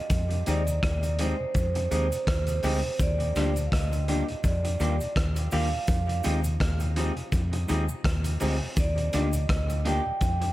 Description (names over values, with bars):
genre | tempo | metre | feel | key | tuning
lovers rock reggae | 83 BPM | 4/4 | swing 56% on 16ths | F dorian | A4 = 440 Hz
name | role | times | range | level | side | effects
vibraphone with medium mallets | melody | 0.0-10.5 s | C5 to G5 | -32 LUFS | right 2 dB | tape echo
vintage muted fingered electric bass | bass | 0.1-10.5 s | D2 to F2 | -27 LUFS | equal | none
crunchy breakbeat drum kit | drums | 0.1-10.5 s | hi-hat, kick drum, rim click | -29 LUFS | equal | none
cabasa | percussion | 0.1-10.4 s | none | -44 LUFS | equal | tape echo
mellow tonewheel organ | accompaniment | 0.3-10.5 s | Eb2 to Eb4 | -39 LUFS | left 1 dB | none
bell-like tine electric piano | accompaniment | 0.5-10.0 s | Ab3 to G4 | -36 LUFS | left 2 dB | wide subtle chorus, tape echo
electric guitar through a small old amp | stabs | 0.5-10.5 s | Eb3 to Ab4 | -35 LUFS | right 1 dB | tape echo
room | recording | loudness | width
small room ambience | none | -24 LUFS | side -16 dB against mid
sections
0.0-10.5 A section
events
none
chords
0.1 Fm7; 3.0 Ebmaj7; 5.9 Fm7; 8.8 Ebmaj7